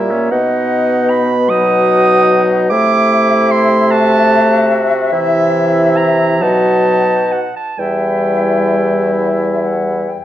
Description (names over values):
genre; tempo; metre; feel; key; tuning
classical, slow romantic movement for wind quintet; 42-51 BPM (dotted quarters); 6/8; rubato; E minor; A4 = 442 Hz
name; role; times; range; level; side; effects
concert flute; melody; 0.0-10.2 s; A#4 to G5; -21 LUFS; left 6 dB; none
warm oboe; second line; 0.0-10.2 s; C#4 to F#4; -23 LUFS; left 2 dB; none
clear clarinet; accompaniment; 0.0-10.1 s; E5 to D#6; -17 LUFS; right 4 dB; none
mellow French horn; accompaniment; 0.0-10.2 s; E3 to B3; -18 LUFS; left 1 dB; none
warm bassoon; bass; 0.0-10.2 s; E2 to C3; -14 LUFS; equal; none
room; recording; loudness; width
moderate recital hall reverb, RT60 1.3 s; worn, warbling old tape, cassette tape, warbly pitch drift; -10 LUFS; side -12 dB against mid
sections
0.0-10.2 A section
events
none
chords
0.3 B; 2.7 Am/C; 5.1 C7; 6.4 B7; 7.8 Em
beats
| 0.32 1.50 | 2.71 3.91 | 5.13 6.42 | 7.79 9.17